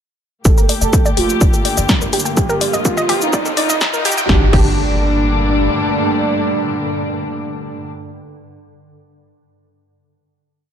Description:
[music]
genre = melodic techno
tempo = 125 BPM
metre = 4/4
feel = straight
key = G minor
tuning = A4 = 441 Hz
[part]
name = analog synth brass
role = melody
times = 0.5-8.1 s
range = D4 to A4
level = -21 LUFS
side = right 2 dB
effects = chorus, cassette tape, sidechain pumping, tape echo
[part]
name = dark studio string section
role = sustained chords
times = 0.5-7.9 s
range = Bb2 to G4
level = -22 LUFS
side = left 3 dB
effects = sidechain pumping, low-pass filter
[part]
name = wide unison pluck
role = arpeggios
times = 0.5-4.7 s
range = G4 to Bb5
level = -21 LUFS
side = right 1 dB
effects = sidechain pumping, tape echo
[part]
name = tight sequencer bass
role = bass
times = 0.5-5.7 s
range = Eb1 to Bb1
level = -19 LUFS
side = equal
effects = sidechain pumping
[part]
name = swarming drone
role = drone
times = 1.3-7.9 s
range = G2 to D3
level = -28 LUFS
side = equal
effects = built-in reverb, sidechain pumping
[part]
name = electronic kick drum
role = drums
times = 0.5-4.7 s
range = none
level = -14 LUFS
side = equal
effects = none
[part]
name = punchy analog drum machine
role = drums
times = 0.5-4.7 s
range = crash cymbal, hi-hat, shaker, snare drum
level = -20 LUFS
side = left 2 dB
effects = none
[part]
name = riser and impact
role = sound effects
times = 2.1-7.9 s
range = none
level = -25 LUFS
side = right 1 dB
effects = none
[sound]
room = light reverb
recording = high-pass filter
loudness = -13 LUFS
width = side -8 dB against mid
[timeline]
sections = 0.5-4.3 build; 4.3-8.1 final chord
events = build-up 0.5-4.3; filter sweep on synth arpeggio sound 0.5-4.3; filter sweep on analog polysynth 0.5-4.3; filter sweep on string section 0.5-4.3; filter sweep 0.5-4.3; riser 2.1-4.3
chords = 0.5 Gmadd9; 2.4 Ebsus2; 4.3 Gmadd9

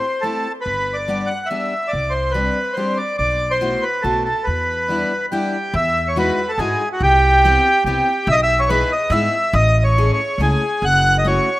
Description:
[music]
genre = musette waltz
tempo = 142 BPM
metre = 3/4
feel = swing 53% on 8ths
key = E minor, E major from 5.7 s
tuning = A4 = 441 Hz
[part]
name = accordion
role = melody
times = 0.0-11.6 s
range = F#4 to F#5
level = -17 LUFS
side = equal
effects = none
[part]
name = picked steel-string acoustic guitar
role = accompaniment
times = 0.0-11.5 s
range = G3 to G#4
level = -26 LUFS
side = left 2 dB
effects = none
[part]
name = upright bass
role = bass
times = 0.7-11.4 s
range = F#1 to G#2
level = -20 LUFS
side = equal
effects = none
[sound]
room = moderate plate reverb, RT60 3.3 s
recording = rough home demo mix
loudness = -15 LUFS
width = side -17 dB against mid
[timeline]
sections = 0.0-5.7 A section; 5.7-11.6 B section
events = none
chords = 0.0 Am7; 0.7 G; 1.9 Csus2; 3.2 B7sus4; 4.0 B7; 4.5 Em7; 5.7 Emaj9; 7.0 Cmaj7; 8.3 Emaj7/B; 9.5 Amaj7; 10.8 F#m7

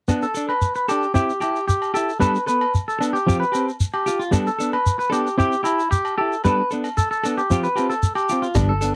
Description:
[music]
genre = highlife guitar band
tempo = 113 BPM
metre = 4/4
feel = straight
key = G mixolydian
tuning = A4 = 440 Hz
[part]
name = semi-hollow electric guitar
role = accompaniment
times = 0.1-9.0 s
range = F3 to A4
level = -25 LUFS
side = equal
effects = harmonic tremolo
[part]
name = agogo bells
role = percussion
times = 0.1-8.7 s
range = none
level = -34 LUFS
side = equal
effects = none
[part]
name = shekere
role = percussion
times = 0.1-8.9 s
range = none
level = -26 LUFS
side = equal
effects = none
[part]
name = clean electric guitar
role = arpeggios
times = 0.2-8.9 s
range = E4 to B4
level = -24 LUFS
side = equal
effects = slapback echo
[part]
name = rich double bass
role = bass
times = 8.6-8.9 s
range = G1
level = -23 LUFS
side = equal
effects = none
[part]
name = vintage drum kit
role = drums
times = 8.6-8.9 s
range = hi-hat, kick drum, rim click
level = -28 LUFS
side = equal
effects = none
[sound]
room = little or no reverb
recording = dry, close 1970s-style studio recording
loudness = -21 LUFS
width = mono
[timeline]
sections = 0.1-8.6 A section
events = none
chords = 0.1 Gadd9; 1.1 C; 2.2 Gadd9; 3.3 Fsus2; 4.3 Gadd9; 5.4 C; 6.4 Gadd9; 7.5 Fsus2

